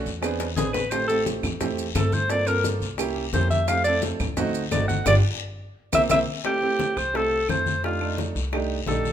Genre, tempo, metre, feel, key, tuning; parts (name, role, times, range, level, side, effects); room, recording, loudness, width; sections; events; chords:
Afro-Cuban jazz; 174 BPM; 4/4; straight; F major; A4 = 441 Hz
clear baby grand piano; accompaniment; 0.0-9.1 s; A3 to A4; -28 LUFS; right 4 dB
upright bass; bass; 0.1-9.1 s; G1 to G2; -27 LUFS; equal
congas; percussion; 0.1-9.1 s; -32 LUFS; left 3 dB
guiro; percussion; 0.1-9.1 s; -37 LUFS; left 8 dB
maracas; percussion; 0.1-6.2 s; -37 LUFS; right 8 dB
bongos; percussion; 0.2-9.1 s; -33 LUFS; left 7 dB
claves; percussion; 0.2-8.7 s; -36 LUFS; right 5 dB
bright alto saxophone; melody; 0.6-9.1 s; F4 to F#5; -24 LUFS; equal
moderate large studio reverb, RT60 1.3 s; minimal, uncompressed stereo recording; -21 LUFS; side -10 dB against mid
0.0-6.5 A section; 6.5-9.1 B section
alto saxophone solo 0.0-6.5; drum fill 0.4-0.9; band accent 5.1-6.5
0.2 E7b13; 0.9 Am7; 2.3 Gm11; 3.0 C7b9; 3.7 Fmaj9; 4.4 D7b9; 5.1 G5; 5.8 C7; 6.5 Fmaj9; 7.8 F13